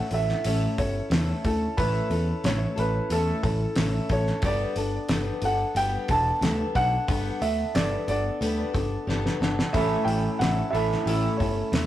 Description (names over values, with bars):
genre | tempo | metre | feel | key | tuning
folk rock and heartland rock | 90 BPM | 4/4 | straight | A mixolydian | A4 = 440 Hz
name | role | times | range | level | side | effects
warm grand piano | melody | 0.0-11.9 s | A4 to A5 | -29 LUFS | right 2 dB | tape echo
picked twelve-string acoustic guitar | accompaniment | 0.0-11.9 s | A2 to A4 | -30 LUFS | left 2 dB | none
fingered electric bass | bass | 0.1-11.9 s | E1 to E2 | -28 LUFS | equal | none
cloth-damped thuddy drum kit | drums | 0.1-11.9 s | hi-hat, kick drum, snare drum | -29 LUFS | equal | none
electric guitar through a small old amp | riff | 9.7-11.9 s | A2 to A4 | -29 LUFS | right 2 dB | none
room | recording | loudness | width
moderate studio reverb, RT60 0.5 s | rough rehearsal-room recording, tube saturation | -23 LUFS | side -13 dB against mid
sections
0.0-11.9 A section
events
drum fill 9.1-9.7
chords
0.0 A; 4.4 Gadd9; 9.7 A